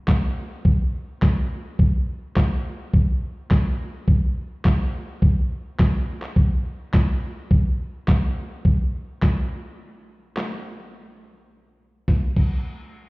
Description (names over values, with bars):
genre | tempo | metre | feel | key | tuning
pop | 105 BPM | 4/4 | straight | none | none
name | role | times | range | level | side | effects
dusty soul sampler-style drum kit | drums | 0.1-12.5 s | crash cymbal, handclaps, kick drum, snare drum | -18 LUFS | equal | none
room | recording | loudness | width
light reverb | heard muffled through a wall, stone room reverb, EQ | -20 LUFS | side -24 dB against mid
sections
0.0-7.5 A section; 7.5-12.1 B section; 12.1-13.1 C section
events
break 11.5-12.1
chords
none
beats
0.08 | 0.65 1.22 1.79 2.37 | 2.94 3.51 4.08 4.65 | 5.22 5.79 6.37 6.94 | 7.51 8.08 8.65 9.22 | 9.79 10.37 10.94 11.51 | 12.08